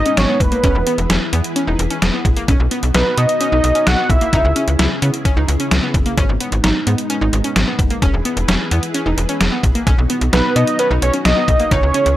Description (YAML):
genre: synth-pop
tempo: 130 BPM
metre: 4/4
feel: straight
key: unclear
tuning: A4 = 440 Hz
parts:
  - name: fat analog lead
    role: melody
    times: 0.0-4.8, 10.3-12.2 s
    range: B4 to F#5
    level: -17 LUFS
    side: right 1 dB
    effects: chorus, analog delay
  - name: string machine, cellos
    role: sustained chords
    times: 0.0-12.2 s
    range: C#3 to B4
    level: -24 LUFS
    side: equal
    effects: ensemble chorus
  - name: slap-like FM bass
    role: bass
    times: 0.0-12.1 s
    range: E1 to C#3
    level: -17 LUFS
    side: equal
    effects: none
  - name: analog pluck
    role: arpeggios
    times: 0.1-12.1 s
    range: A#3 to E4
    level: -23 LUFS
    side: equal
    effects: chorus, analog delay
  - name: detuned 8-bit digital drum machine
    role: drums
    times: 0.1-12.2 s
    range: hi-hat, kick drum, snare drum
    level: -17 LUFS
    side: equal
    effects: none
room: digital ambience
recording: dry, gritty hardware recording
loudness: -14 LUFS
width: side -14 dB against mid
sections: 0.0-12.2 A section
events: none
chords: 0.0 G#m7; 0.6 E; 2.5 B; 4.3 C#m; 6.2 G#m; 8.0 E; 9.9 B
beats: 0.17 | 0.64 1.10 1.56 2.02 | 2.48 2.94 3.41 3.87 | 4.33 4.79 5.25 5.71 | 6.17 6.64 7.10 7.56 | 8.02 8.48 8.94 9.41 | 9.87 10.33 10.79 11.25 | 11.71